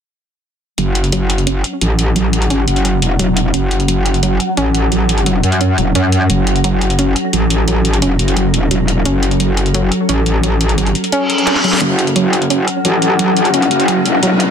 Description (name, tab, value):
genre	dark technical drum and bass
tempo	174 BPM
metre	4/4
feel	straight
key	F# minor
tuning	A4 = 444 Hz
part	swarming drone	sustained chords	1.6-14.5 s	F#3 to F#5	-20 LUFS	left 2 dB	built-in reverb
part	soft round pluck	arpeggios	0.8-14.3 s	F#3 to C#4	-18 LUFS	right 1 dB	chorus, tape echo
part	metallic wobble bass	bass	0.8-14.5 s	E1 to F#2	-14 LUFS	equal	chorus, overdrive, high-pass filter
part	drum and bass drum kit	drums	0.8-14.5 s	hi-hat, snare drum	-20 LUFS	left 1 dB	high-pass filter on hats, high-pass filter on snare, high-pass filter on room
part	reverse cymbal and riser	sound effects	11.2-14.5 s	none	-21 LUFS	left 1 dB	none
room	light reverb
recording	dense, heavily limited modern master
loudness	-12 LUFS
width	side -8 dB against mid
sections	0.8-11.8 A section; 11.8-14.5 B section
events	filter sweep on synth drone 0.8-11.8; filter sweep on synth pluck 0.8-11.8; reverse cymbal 11.2-11.8; drum fill 11.5-11.8; build-up 11.8-14.5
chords	0.8 F#5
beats	| 0.78 1.12 1.47 1.81 | 2.16 2.50 2.85 3.19 | 3.54 3.88 4.23 4.57 | 4.92 5.26 5.61 5.95 | 6.30 6.64 6.99 7.33 | 7.68 8.02 8.37 8.71 | 9.06 9.40 9.75 10.09 | 10.44 10.78 11.12 11.47 | 11.81 12.16 12.50 12.85 | 13.19 13.54 13.88 14.23